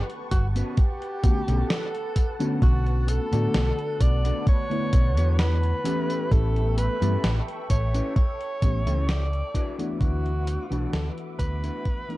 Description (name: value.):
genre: vaporwave.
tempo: 65 BPM.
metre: 4/4.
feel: straight.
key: D major.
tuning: A4 = 440 Hz.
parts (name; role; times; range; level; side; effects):
clear alto saxophone; melody; 0.0-12.2 s; F#4 to D5; -31 LUFS; equal; tape echo.
soft string machine; sustained chords; 0.0-12.2 s; A4 to D6; -40 LUFS; equal; phaser, ensemble chorus.
gated 80s digital drum machine; drums; 0.1-12.2 s; hi-hat, snare drum, tambourine; -31 LUFS; equal; gated reverb, gated reverb snare.
mellow electric guitar; riff; 0.3-11.9 s; B3 to D5; -34 LUFS; left 2 dB; analog chorus, vintage 12-bit sampler grit, analog delay.
hollow-body short-scale fingered electric bass; bass; 0.3-11.7 s; G1 to A2; -24 LUFS; equal; none.
electronic kick drum; drums; 0.3-12.0 s; none; -21 LUFS; equal; none.
mellow FM electric piano; accompaniment; 1.2-12.2 s; D3 to D5; -31 LUFS; left 1 dB; analog chorus.
room: little or no reverb.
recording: dark, warm production.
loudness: -22 LUFS.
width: side -18 dB against mid.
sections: 0.0-12.2 A section.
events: fade-out 7.5-12.2.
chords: 0.0 Gmaj9#11; 2.6 Bm7; 5.9 A7; 9.5 D69.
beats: 0.78 1.70 | 2.62 3.54 4.47 5.39 | 6.32 7.24 8.16 9.08 | 10.01 10.93 11.85.